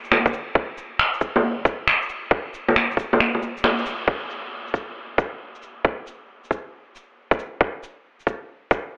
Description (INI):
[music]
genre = future garage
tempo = 136 BPM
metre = 4/4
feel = swing 66% on 16ths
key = none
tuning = none
[part]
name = electronic shaker, finger snaps and bongos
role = drums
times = 0.0-8.8 s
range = none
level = -24 LUFS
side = equal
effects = overdrive, low-pass filter on perc, low-pass filter on snare, low-pass filter on room
[part]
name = electronic kick drum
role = drums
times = 0.3-8.8 s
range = none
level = -24 LUFS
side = equal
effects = overdrive
[sound]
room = moderate huge ambient reverb, RT60 8.8 s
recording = telephone sound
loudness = -24 LUFS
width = mono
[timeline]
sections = 0.0-4.1 A section; 4.1-9.0 B section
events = kick drops out 3.2-4.1; band accent 3.6; filter sweep on drum 4.1-9.0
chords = none